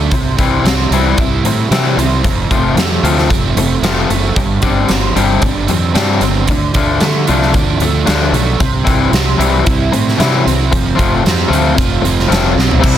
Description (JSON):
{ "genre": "indie rock", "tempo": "113 BPM", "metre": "4/4", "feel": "straight", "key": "unclear", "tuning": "A4 = 440 Hz", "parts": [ { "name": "overdriven electric guitar", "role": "riff", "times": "0.0-13.0 s", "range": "F2 to F4", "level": "-18 LUFS", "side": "right 7 dB", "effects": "analog chorus, digital delay" }, { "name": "fuzz fingered electric bass", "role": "bass", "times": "0.0-13.0 s", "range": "F1 to D3", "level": "-16 LUFS", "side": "equal", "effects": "overdrive" }, { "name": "fuzz guitar", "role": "riff", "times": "0.1-13.0 s", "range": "C3 to G4", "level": "-17 LUFS", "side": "left 7 dB", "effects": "distortion" }, { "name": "big rock drum kit", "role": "drums", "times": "0.1-13.0 s", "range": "crash cymbal, hi-hat, kick drum, snare drum, toms", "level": "-16 LUFS", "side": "equal", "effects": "none" } ], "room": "light reverb, small room reverb", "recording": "dense, heavily limited modern master", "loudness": "-10 LUFS", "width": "side -10 dB against mid", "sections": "0.0-12.8 A section", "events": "drum fill 12.6", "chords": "0.1 C; 2.2 F; 4.4 Gsus4; 6.5 Dm; 8.6 C; 10.7 F", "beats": "| 0.11 0.64 1.18 1.71 | 2.24 2.77 3.30 3.83 | 4.36 4.89 5.42 5.95 | 6.48 7.01 7.54 8.07 | 8.60 9.12 9.65 10.18 | 10.71 11.24 11.77 12.30 | 12.82" }